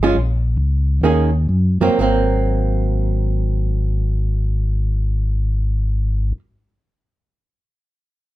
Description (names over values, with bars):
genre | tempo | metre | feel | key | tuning
jazz | 114-150 BPM | 4/4 | swing 63% on 8ths | Ab mixolydian | A4 = 439 Hz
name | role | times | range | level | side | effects
archtop guitar, miked and amplified | accompaniment | 0.0-6.4 s | Eb3 to Ab4 | -19 LUFS | right 4 dB | none
mellow tonewheel organ | bass | 0.0-6.3 s | G1 to Gb2 | -17 LUFS | left 1 dB | chorus vibrato, slow rotary speaker
room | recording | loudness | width
light reverb | none | -16 LUFS | side -15 dB against mid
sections
0.0-2.0 A section; 2.0-6.2 B section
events
slowing down 0.0-2.0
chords
0.2 Bbm; 1.0 Eb7sus4; 2.0 Ab9